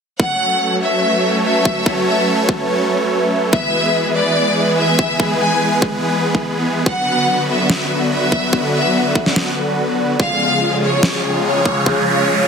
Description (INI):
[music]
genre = heavy wobble dubstep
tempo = 144 BPM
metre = 4/4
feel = half-time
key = F# minor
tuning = A4 = 440 Hz
[part]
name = clear chamber violin section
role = melody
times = 0.2-12.4 s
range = C#5 to G#5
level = -18 LUFS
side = left 1 dB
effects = vintage 12-bit sampler grit, ping-pong delay
[part]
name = supersaw chords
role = sustained chords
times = 0.2-12.5 s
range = C#3 to C#5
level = -19 LUFS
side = equal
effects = sidechain pumping
[part]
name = electronic kick drum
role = drums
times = 0.2-11.9 s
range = none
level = -18 LUFS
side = equal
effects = overdrive, high-pass filter on kick, high-pass filter on room
[part]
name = airy breathy pad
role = texture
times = 0.5-12.5 s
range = B3 to A5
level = -21 LUFS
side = equal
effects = chorus, sidechain pumping
[part]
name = electronic snare drum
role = drums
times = 7.7-11.1 s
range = none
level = -17 LUFS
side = equal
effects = overdrive
[part]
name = riser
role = sound effects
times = 10.7-12.5 s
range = none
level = -21 LUFS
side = right 1 dB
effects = none
[sound]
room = moderate digital room reverb, RT60 1.1 s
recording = dense, heavily limited modern master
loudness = -14 LUFS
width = side -6 dB against mid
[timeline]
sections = 0.2-12.5 A section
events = riser 10.7-12.5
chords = 0.2 F#m; 3.5 E; 6.9 Bm; 10.2 C#